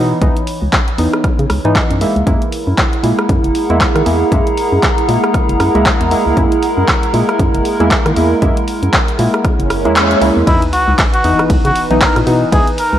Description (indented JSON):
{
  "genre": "deep house",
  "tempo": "117 BPM",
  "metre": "4/4",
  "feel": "swing 59% on 16ths",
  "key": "unclear",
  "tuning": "A4 = 440 Hz",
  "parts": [
    { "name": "warm analog keys", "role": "stabs", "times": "0.0-12.7 s", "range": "E3 to E4", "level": "-17 LUFS", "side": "equal", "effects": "chorus, sidechain pumping, low-pass filter, analog delay" },
    { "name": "organ-like FM bass", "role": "bass", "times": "0.0-13.0 s", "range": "F#1 to D#3", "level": "-16 LUFS", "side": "equal", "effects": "none" },
    { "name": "warbly tape-like pad", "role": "texture", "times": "0.0-10.5 s", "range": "E3 to B5", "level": "-19 LUFS", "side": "right 1 dB", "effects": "chorus, built-in reverb, sidechain pumping" },
    { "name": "electronic kick drum", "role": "drums", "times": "0.2-12.6 s", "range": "none", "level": "-16 LUFS", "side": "equal", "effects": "none" },
    { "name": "punchy analog drum machine", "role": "drums", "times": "0.2-12.9 s", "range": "handclaps, hi-hat, ride cymbal, rim click", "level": "-18 LUFS", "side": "equal", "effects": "none" },
    { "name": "hollow soft pad", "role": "sustained chords", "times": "2.3-13.0 s", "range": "E3 to B4", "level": "-23 LUFS", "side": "equal", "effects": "chorus, sidechain pumping" },
    { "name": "swell and sub drop", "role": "sound effects", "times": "9.6-12.5 s", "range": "none", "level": "-20 LUFS", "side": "right 1 dB", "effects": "none" },
    { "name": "trumpet with cup mute", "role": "melody", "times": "10.5-13.0 s", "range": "E4 to A#4", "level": "-16 LUFS", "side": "equal", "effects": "analog delay" }
  ],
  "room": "light reverb, digital ambience",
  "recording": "cassette tape",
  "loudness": "-11 LUFS",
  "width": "side -11 dB against mid",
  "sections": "0.0-10.5 A section; 10.5-13.0 B section",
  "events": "swell 9.6-10.5; kick drops out 10.0-10.5; band accent 10.0; drop 10.5-13.0; impact 10.5-12.5",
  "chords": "0.0 C#m9; 2.0 F#9; 10.5 C#m9",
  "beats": "| 0.22 0.73 1.24 1.75 | 2.27 2.78 3.29 3.81 | 4.32 4.83 5.34 5.86 | 6.37 6.88 7.39 7.91 | 8.42 8.93 9.45 9.96 | 10.47 10.98 11.50 12.01 | 12.52"
}